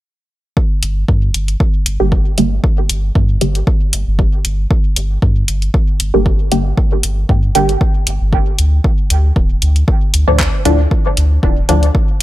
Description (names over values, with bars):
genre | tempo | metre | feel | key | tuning
dub techno | 116 BPM | 4/4 | swing 54% on 16ths | G minor | A4 = 439 Hz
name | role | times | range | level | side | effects
electronic kick drum | drums | 0.6-12.1 s | none | -14 LUFS | equal | none
soft dub sub bass | bass | 0.8-12.2 s | D1 to G2 | -15 LUFS | equal | sidechain pumping
deep house drum kit | drums | 0.8-12.2 s | handclaps, hi-hat | -18 LUFS | left 1 dB | none
filtered dub chord stab | stabs | 2.0-11.8 s | A2 to G4 | -17 LUFS | equal | phaser, sidechain pumping, dub echo
room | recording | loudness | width
digital ambience | none | -12 LUFS | side -15 dB against mid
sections
0.6-12.2 A section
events
none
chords
0.6 Gm; 8.8 Dm